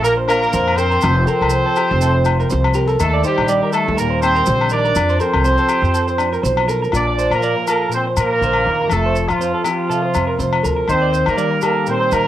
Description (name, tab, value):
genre	highlife guitar band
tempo	122 BPM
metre	4/4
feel	swing 55% on 16ths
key	Bb major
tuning	A4 = 440 Hz
part	warm horn section	melody	0.0-12.3 s	F3 to D5	-18 LUFS	right 1 dB	cassette tape, plate reverb
part	nylon-string guitar	accompaniment	0.0-12.3 s	Bb2 to Bb4	-23 LUFS	left 5 dB	cassette tape
part	electric guitar through a small old amp	arpeggios	0.0-12.2 s	G4 to D5	-22 LUFS	right 4 dB	cassette tape, plate reverb, tape echo
part	upright bass	bass	0.0-12.3 s	F1 to Eb3	-20 LUFS	equal	none
part	maracas	percussion	0.0-12.2 s	none	-33 LUFS	right 7 dB	none
part	agogo bells	percussion	0.3-12.3 s	none	-23 LUFS	left 6 dB	none
room	moderate studio reverb, RT60 0.5 s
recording	home recording on cassette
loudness	-14 LUFS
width	side -12 dB against mid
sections	0.0-6.9 A section; 6.9-12.3 B section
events	none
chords	0.0 Bb; 1.0 F; 3.0 Eb; 5.0 F; 6.9 Bb; 8.9 F; 10.9 Eb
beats	0.04 0.53 | 1.02 1.51 2.00 2.50 | 2.99 3.48 3.97 4.47 | 4.96 5.45 5.95 6.44 | 6.93 7.43 7.92 8.41 | 8.91 9.40 9.90 10.39 | 10.89 11.38 11.87